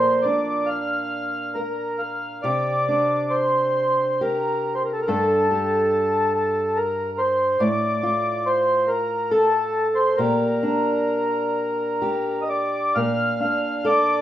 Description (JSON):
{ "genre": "celtic folk, Celtic slow air", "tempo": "62-72 BPM", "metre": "3/4", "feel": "rubato", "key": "unclear", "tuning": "A4 = 440 Hz", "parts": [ { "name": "mellow accordion", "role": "melody", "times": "0.0-14.2 s", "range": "A4 to F5", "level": "-21 LUFS", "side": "equal", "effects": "none" }, { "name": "fingerpicked steel-string acoustic guitar", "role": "accompaniment", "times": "0.0-14.2 s", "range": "G2 to Bb4", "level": "-25 LUFS", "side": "equal", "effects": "none" } ], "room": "moderate large studio reverb, RT60 0.8 s", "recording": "band playing live in one room", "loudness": "-20 LUFS", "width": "side -12 dB against mid", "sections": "0.0-12.9 A section; 12.9-14.2 B section", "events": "none", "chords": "0.0 Bb; 2.5 Csus2; 5.1 Gsus2; 7.6 Dm/A; 10.2 Bb6; 12.9 Bbmaj7", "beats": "0.69 1.57 | 2.45 3.34 4.22 | 5.08 5.92 6.77 | 7.61 8.46 9.32 | 10.19 11.07 12.01 | 12.94 13.84" }